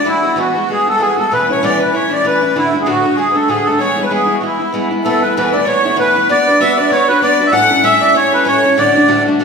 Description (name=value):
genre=celtic folk, Celtic reel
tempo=193 BPM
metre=4/4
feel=swing 56% on 8ths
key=E mixolydian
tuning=A4 = 439 Hz
part: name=accordion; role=melody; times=0.0-9.2 s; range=E4 to F#5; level=-13 LUFS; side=right 1 dB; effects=light tremolo tuning
part: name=rich fiddle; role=second line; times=0.0-9.2 s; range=E4 to F#5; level=-19 LUFS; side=left 4 dB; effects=none
part: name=picked steel-string acoustic guitar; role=accompaniment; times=0.0-9.4 s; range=D2 to B4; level=-16 LUFS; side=equal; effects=none
room=wet recital hall reverb, RT60 1.4 s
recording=recorded in a church or concert hall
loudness=-11 LUFS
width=side -5 dB against mid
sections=0.0-5.0 A section; 5.0-9.4 B section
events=none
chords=0.1 Eadd9; 1.3 Aadd9/E; 2.6 D; 3.8 E; 5.0 Esus4; 6.3 Bm; 7.5 A; 8.8 D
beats=| 0.06 0.37 0.69 1.00 | 1.31 1.62 1.94 2.25 | 2.56 2.87 3.18 3.49 | 3.81 4.12 4.43 4.74 | 5.05 5.36 5.67 5.98 | 6.29 6.60 6.91 7.22 | 7.54 7.84 8.16 8.47 | 8.78 9.09 9.40